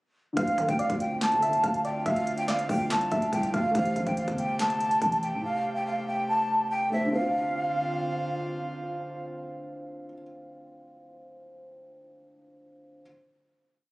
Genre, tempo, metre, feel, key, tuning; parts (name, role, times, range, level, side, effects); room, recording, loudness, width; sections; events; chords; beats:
hip hop, trap; 142 BPM; 4/4; half-time; D minor; A4 = 440 Hz
dark concert grand piano; accompaniment; 0.3-13.0 s; D3 to C5; -35 LUFS; equal
breathy mellow jazz flute; melody; 0.4-8.4 s; E5 to A5; -27 LUFS; equal; digital delay
soft round pluck; second line; 0.4-3.7 s; D5 to F5; -34 LUFS; equal; chorus, digital delay
airy breathy pad; sustained chords; 0.4-10.1 s; C3 to G4; -36 LUFS; equal; chorus
growling 808-style bass; bass; 0.4-5.4 s; G1 to D3; -32 LUFS; equal
trap drum kit; drums; 0.4-5.3 s; handclaps, hi-hat, kick drum, snare drum; -33 LUFS; equal
light reverb; recorded on a phone in the room, club reverb; -25 LUFS; side -21 dB against mid
0.4-7.1 hook; 7.1-10.5 final chord
0.4 Dm7; 3.7 Am7; 7.1 Dm7
| 0.37 0.79 1.21 1.64 | 2.06 2.48 2.90 3.33 | 3.75 4.17 4.59 5.02 | 5.44 5.86 6.28 6.71 | 7.13 7.55 7.97 8.40 | 8.82 9.24 9.66 10.09